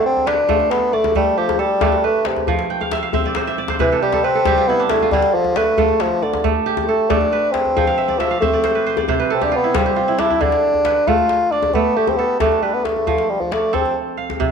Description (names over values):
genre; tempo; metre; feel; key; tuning
west african traditional, West African string and xylophone music; 91 BPM (dotted quarters); 12/8; straight; D dorian; A4 = 441 Hz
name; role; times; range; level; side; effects
mellow bassoon; melody; 0.0-14.0 s; C3 to F4; -17 LUFS; left 1 dB; none
kora; arpeggios; 0.0-14.5 s; C3 to G5; -20 LUFS; right 7 dB; none
djembe; percussion; 0.2-14.5 s; none; -23 LUFS; left 6 dB; none
room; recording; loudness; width
wet echo chamber reverb, RT60 1.4 s, small room ambience; 1960s-style stereo with parts hard left and right; -15 LUFS; side -6 dB against mid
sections
0.0-14.5 A section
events
bassoon solo 0.0-14.5; kora fill 2.7-5.1, 7.8-10.4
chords
0.0 Dm; 2.5 F5; 3.8 C5; 5.1 Dm; 7.8 F; 9.1 C5; 10.4 Dm; 13.1 F